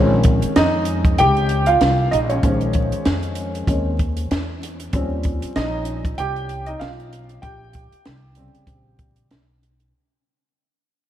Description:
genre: hip hop, jazz-hop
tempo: 96 BPM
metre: 4/4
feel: swing 57% on 16ths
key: Bb dorian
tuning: A4 = 440 Hz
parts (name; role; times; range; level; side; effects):
- dark grand piano; accompaniment; 0.0-9.3 s; Db3 to G5; -20 LUFS; equal; lush chorus
- upright bass; bass; 0.0-9.9 s; Bb1 to F2; -23 LUFS; equal; none
- compact cocktail drum kit; drums; 0.2-9.9 s; hi-hat, kick drum, snare drum; -22 LUFS; equal; none
room: moderate church reverb, RT60 3.5 s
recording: dreamy mix soaked in reverb, vinyl crackle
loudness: -17 LUFS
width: side -11 dB against mid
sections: 0.0-9.9 A section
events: fade-out 0.0-9.9; grand piano solo 0.0-9.9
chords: 0.0 Bbm11; 4.9 Eb13; 7.4 Bbm69

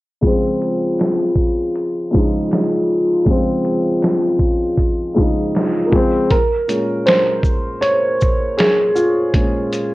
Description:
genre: lo-fi hip hop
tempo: 79 BPM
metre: 4/4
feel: swing 56% on 16ths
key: Db major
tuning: A4 = 439 Hz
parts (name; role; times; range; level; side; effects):
- dark upright piano; accompaniment; 0.2-9.9 s; Bb2 to Db5; -16 LUFS; equal; low-pass filter
- lo-fi sampler-style drum kit; drums; 0.2-9.9 s; hi-hat, kick drum, shaker, snare drum; -18 LUFS; equal; none
room: moderate studio reverb, RT60 0.7 s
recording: worn, warbling old tape, cassette tape, warbly pitch drift, low-pass filter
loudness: -14 LUFS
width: side -18 dB against mid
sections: 0.2-6.3 A section; 6.3-9.9 B section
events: filter sweep 0.2-6.3; upright piano solo 6.3-9.9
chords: 0.2 Dbmaj9; 5.9 Dbmaj7; 6.3 Bbm9

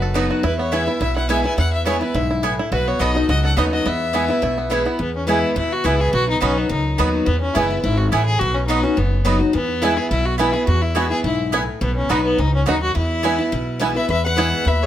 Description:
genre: bluegrass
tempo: 211 BPM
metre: 4/4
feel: straight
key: E major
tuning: A4 = 440 Hz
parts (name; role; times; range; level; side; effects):
- bluegrass banjo; melody; 0.0-5.0, 9.8-14.4 s; B3 to A4; -25 LUFS; right 2 dB; none
- clear fiddle; melody; 0.0-14.9 s; B3 to G#5; -23 LUFS; left 2 dB; none
- picked steel-string acoustic guitar; accompaniment; 0.0-14.9 s; E2 to F#4; -22 LUFS; left 1 dB; none
- upright bass; bass; 0.0-14.9 s; F#1 to E2; -22 LUFS; equal; none
- mandolin; stabs; 0.1-14.5 s; B3 to B5; -24 LUFS; right 4 dB; none
- lap resonator guitar; second line; 14.0-14.9 s; G#4 to B4; -25 LUFS; left 4 dB; none
room: moderate studio reverb, RT60 0.9 s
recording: none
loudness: -17 LUFS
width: side -11 dB against mid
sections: 0.0-5.0 A section; 5.0-14.1 A section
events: none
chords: 0.4 E; 2.7 B; 3.9 E; 6.1 B; 7.3 E; 8.4 B; 9.5 E; 11.8 B; 13.0 E

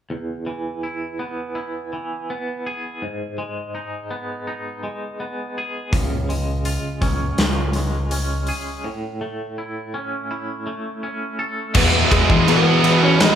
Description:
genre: quiet-loud alternative rock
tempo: 82 BPM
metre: 4/4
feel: straight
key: E major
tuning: A4 = 440 Hz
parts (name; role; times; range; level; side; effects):
- twangy electric guitar; arpeggios; 0.1-11.8 s; E2 to A4; -27 LUFS; right 1 dB; tremolo
- growling picked electric bass; bass; 5.9-13.3 s; C#2 to E3; -21 LUFS; equal; overdrive
- big rock drum kit; drums; 5.9-13.4 s; crash cymbal, hi-hat, kick drum, ride cymbal, snare drum; -20 LUFS; equal; none
- tight distorted guitar; riff; 11.7-13.4 s; E2 to E3; -23 LUFS; equal; distortion
- fuzz guitar; riff; 11.8-13.4 s; E3 to E4; -22 LUFS; left 7 dB; distortion
- scooped high-gain guitar; riff; 11.8-13.4 s; E2 to E3; -20 LUFS; right 8 dB; distortion
- lead guitar through a small cranked amp; melody; 12.1-13.4 s; G#3 to D#5; -19 LUFS; right 1 dB; overdrive
room: moderate large studio reverb, RT60 1.4 s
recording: band playing live in one room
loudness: -20 LUFS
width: side -9 dB against mid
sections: 0.1-11.8 A section; 11.8-13.4 B section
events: break 8.8-11.8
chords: 0.1 E; 3.0 G#m; 5.9 C#; 8.8 A; 11.8 E

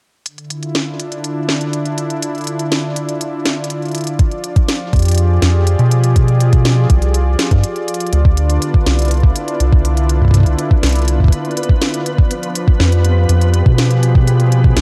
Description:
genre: IDM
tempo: 122 BPM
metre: 4/4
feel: straight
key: D dorian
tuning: A4 = 443 Hz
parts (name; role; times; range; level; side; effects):
- warm analog pad; sustained chords; 0.3-14.8 s; D3 to D5; -23 LUFS; equal; chorus, vintage 12-bit sampler grit, sidechain pumping
- organic electronic drum kit; drums; 0.3-14.8 s; hi-hat, snare drum; -23 LUFS; equal; overdrive, low-pass filter on hats, low-pass filter on snare, tape echo
- electronic kick drum; drums; 4.2-14.7 s; none; -14 LUFS; equal; overdrive
- rubbery square bass; bass; 4.9-14.8 s; C2 to B2; -15 LUFS; equal; none
- flickering grainy texture; texture; 8.4-14.8 s; B3 to B4; -29 LUFS; equal; built-in reverb
room: digital ambience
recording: dry, gritty hardware recording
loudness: -14 LUFS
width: mono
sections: 0.3-8.1 A section; 8.1-14.8 B section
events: break 7.6-8.1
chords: 0.3 Dm; 4.2 Fmadd9; 8.1 Dm7; 12.1 Fmadd9

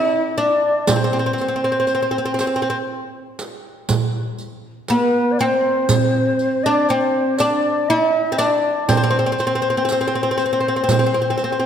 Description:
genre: Arabic maqam ensemble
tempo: 120 BPM (eighths)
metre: 10/8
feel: straight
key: unclear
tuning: A4 = 442 Hz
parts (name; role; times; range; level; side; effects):
- oud; melody; 0.0-11.7 s; Bb3+50c to E4-50c; -18 LUFS; equal; none
- breathy ney; second line; 0.0-11.7 s; B4-47c to E5-44c; -22 LUFS; left 2 dB; none
- riq; percussion; 0.4-11.5 s; none; -27 LUFS; right 2 dB; none
- darbuka; percussion; 0.9-11.1 s; none; -22 LUFS; right 4 dB; none
room: wet concert hall reverb, RT60 1.8 s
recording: none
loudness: -16 LUFS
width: side -8 dB against mid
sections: 0.0-11.7 A section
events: none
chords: none

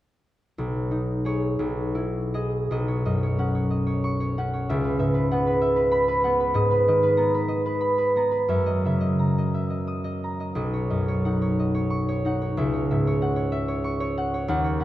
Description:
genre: classical, solo harp piece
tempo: 49-66 BPM (dotted quarters)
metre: 6/8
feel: rubato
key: B major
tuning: A4 = 441 Hz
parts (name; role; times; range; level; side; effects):
- concert harp; solo; 0.6-14.8 s; B1 to D#6; -22 LUFS; equal; none
room: moderate concert hall reverb, RT60 2.0 s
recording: dark, warm production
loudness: -22 LUFS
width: side -14 dB against mid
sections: 0.6-2.7 A section; 2.7-14.8 B section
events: none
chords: 0.6 B69; 1.6 Emaj7/B; 2.7 Badd9; 4.7 C#m11; 6.6 G#madd9; 8.5 F#6; 10.6 Badd9; 12.6 C#madd9

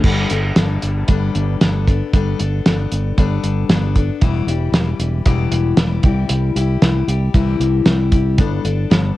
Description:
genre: folk rock and heartland rock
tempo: 115 BPM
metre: 4/4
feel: straight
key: G major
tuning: A4 = 441 Hz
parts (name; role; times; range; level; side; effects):
- picked steel-string acoustic guitar; accompaniment; 0.0-9.2 s; E2 to A4; -22 LUFS; left 8 dB; cassette tape
- fingered electric bass; bass; 0.0-9.1 s; E1 to C2; -18 LUFS; right 1 dB; none
- cloth-damped thuddy drum kit; drums; 0.0-9.0 s; crash cymbal, hi-hat, kick drum, snare drum; -16 LUFS; right 1 dB; cassette tape
room: little or no reverb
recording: home recording on cassette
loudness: -14 LUFS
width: side -16 dB against mid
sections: 0.0-9.2 A section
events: none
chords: 0.0 Gadd9; 4.2 Em; 6.0 C; 8.4 Gadd9

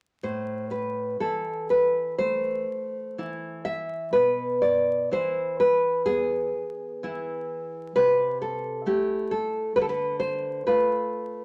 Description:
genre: romantic piece for solo classical guitar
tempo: 52-68 BPM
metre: 4/4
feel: rubato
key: A minor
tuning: A4 = 439 Hz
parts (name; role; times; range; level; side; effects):
- nylon-string guitar; solo; 0.2-11.4 s; A2 to E5; -26 LUFS; equal; none
room: wet studio reverb, RT60 0.7 s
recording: vinyl crackle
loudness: -26 LUFS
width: mono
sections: 0.2-11.4 A section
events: none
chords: 0.2 Am; 4.1 E/B; 8.0 Am/C; 9.8 Bm7b5/D

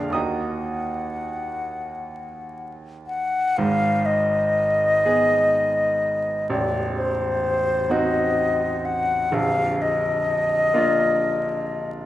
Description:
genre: classical, romantic duo for flute and grand piano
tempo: 34-43 BPM (dotted quarters)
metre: 6/8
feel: rubato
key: unclear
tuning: A4 = 439 Hz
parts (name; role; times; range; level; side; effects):
- bright grand piano; accompaniment; 0.0-12.1 s; A0 to Gb6; -25 LUFS; right 2 dB; none
- mellow concert flute; melody; 0.2-11.9 s; C5 to Gb5; -21 LUFS; left 2 dB; none
room: moderate recital hall reverb, RT60 1.6 s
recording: dark, warm production, vinyl crackle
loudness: -19 LUFS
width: side -14 dB against mid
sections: 0.0-3.6 A section; 3.6-12.1 B section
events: none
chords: 0.1 Ebm; 3.6 Abm; 6.5 Adim7; 9.3 Bb

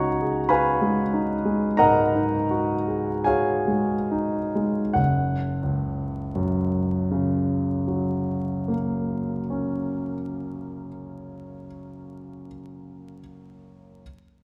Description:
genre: classical, impressionist solo piano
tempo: 33-51 BPM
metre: 4/4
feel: rubato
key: F# major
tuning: A4 = 440 Hz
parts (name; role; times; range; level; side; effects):
- clear grand piano; solo; 0.0-14.0 s; F#1 to C#6; -25 LUFS; equal; none
room: wet concert hall reverb, RT60 1.9 s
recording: vinyl crackle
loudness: -24 LUFS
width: mono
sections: 0.0-5.0 A section; 5.0-11.7 B section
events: slowing down 0.0-5.0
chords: 0.0 C#9sus4; 5.0 F#

